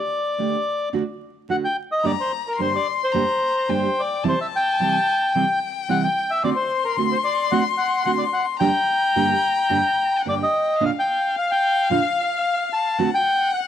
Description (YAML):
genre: tango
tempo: 109 BPM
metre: 4/4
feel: rubato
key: G harmonic minor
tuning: A4 = 440 Hz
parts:
  - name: bandoneon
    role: melody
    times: 0.0-13.6 s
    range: Bb4 to A5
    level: -21 LUFS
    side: left 1 dB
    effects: none
  - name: nylon-string guitar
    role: accompaniment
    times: 0.4-13.1 s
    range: G2 to G4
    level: -24 LUFS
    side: right 5 dB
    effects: none
  - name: warm violin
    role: second line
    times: 2.0-13.7 s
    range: F5 to C6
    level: -26 LUFS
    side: left 8 dB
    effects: none
room: moderate echo chamber reverb, RT60 1.4 s, small room ambience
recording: 1960s-style stereo, vinyl crackle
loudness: -19 LUFS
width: side -10 dB against mid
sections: 0.0-10.8 A section; 10.8-13.7 B section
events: none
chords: 0.0 Dsus4; 0.9 D; 2.0 Gm; 4.2 C; 6.4 D7; 8.6 Gm; 10.8 Bb; 13.0 D7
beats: 0.38 0.93 1.48 | 2.04 2.59 3.14 3.69 | 4.24 4.79 5.34 5.88 | 6.43 6.97 7.52 8.06 | 8.61 9.16 9.71 10.26 | 10.81 11.36 11.91 12.45 | 12.99 13.53